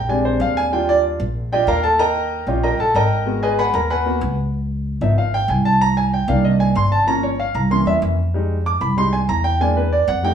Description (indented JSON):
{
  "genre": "Afro-Cuban jazz",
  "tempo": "189 BPM",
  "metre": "4/4",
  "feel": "straight",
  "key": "unclear",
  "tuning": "A4 = 440 Hz",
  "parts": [
    { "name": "warm concert grand piano", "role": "accompaniment", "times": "0.0-10.3 s", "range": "Eb3 to D6", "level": "-18 LUFS", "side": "right 1 dB", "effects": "none" },
    { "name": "upright bass", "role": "bass", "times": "0.0-10.3 s", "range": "G1 to F2", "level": "-20 LUFS", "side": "equal", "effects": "none" }
  ],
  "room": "wet studio reverb, RT60 0.8 s",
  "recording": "heard from further back in the room, small room ambience, faint mains hum",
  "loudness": "-16 LUFS",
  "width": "side -8 dB against mid",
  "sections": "0.7-10.3 A section",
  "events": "grand piano solo 0.0-10.3",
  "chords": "0.1 Bb13; 0.7 Ebmaj9; 2.0 Eb7; 3.3 Abm7; 4.5 Db9; 5.8 Cm9; 7.1 Gm7b5; 7.7 C7b9; 8.3 Fm9; 9.6 E7#11"
}